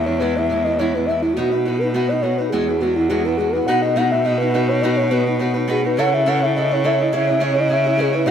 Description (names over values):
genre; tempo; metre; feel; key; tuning
celtic folk, Celtic reel; 209 BPM; 4/4; swing 54% on 8ths; unclear; A4 = 439 Hz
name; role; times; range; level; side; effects
pure breathy sine lead; melody; 0.0-8.3 s; E4 to F#5; -20 LUFS; left 1 dB; chorus, ping-pong delay
fingerpicked steel-string acoustic guitar; accompaniment; 0.0-8.3 s; E3 to C#5; -21 LUFS; right 1 dB; none
clear cello; bass; 0.0-8.3 s; E2 to C#3; -23 LUFS; right 1 dB; none
room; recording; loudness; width
moderate plate reverb, RT60 3.4 s; dreamy mix soaked in reverb; -16 LUFS; side -8 dB against mid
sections
0.0-3.7 A section; 3.7-8.3 B section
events
none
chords
0.0 E; 1.4 B; 2.5 Eadd9; 3.7 B; 6.0 A/C#; 7.1 C#m